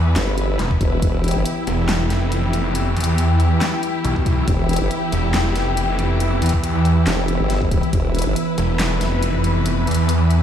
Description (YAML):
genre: heavy wobble dubstep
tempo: 139 BPM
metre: 4/4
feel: swing 54% on 16ths, half-time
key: E phrygian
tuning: A4 = 440 Hz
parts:
  - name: evolving wavetable pad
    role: sustained chords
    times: 0.0-10.4 s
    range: E3 to G5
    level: -24 LUFS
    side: right 2 dB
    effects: ensemble chorus, built-in reverb, sidechain pumping
  - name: snarling distorted saw bass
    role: bass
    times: 0.0-10.4 s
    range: E1 to E2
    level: -18 LUFS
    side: equal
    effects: distortion, overdrive
  - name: rich studio string section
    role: texture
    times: 0.0-10.4 s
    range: E4 to B4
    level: -25 LUFS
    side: left 3 dB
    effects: sidechain pumping
  - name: formant-sweep wobble bass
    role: bass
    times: 0.2-1.4, 4.5-8.3 s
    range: E1 to G1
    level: -21 LUFS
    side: equal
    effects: chorus, overdrive
  - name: dubstep drum kit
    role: drums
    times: 0.2-10.4 s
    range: handclaps, hi-hat, snare drum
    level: -26 LUFS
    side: equal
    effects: overdrive, studio reverb
  - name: electronic kick drum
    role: drums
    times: 0.7-1.1, 4.2-8.0 s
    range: none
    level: -19 LUFS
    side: equal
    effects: overdrive, studio reverb
room: digital ambience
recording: played on a big sound system in a bare room, stone room reverb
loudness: -16 LUFS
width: side -9 dB against mid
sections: 0.0-10.4 A section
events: none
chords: 0.0 E5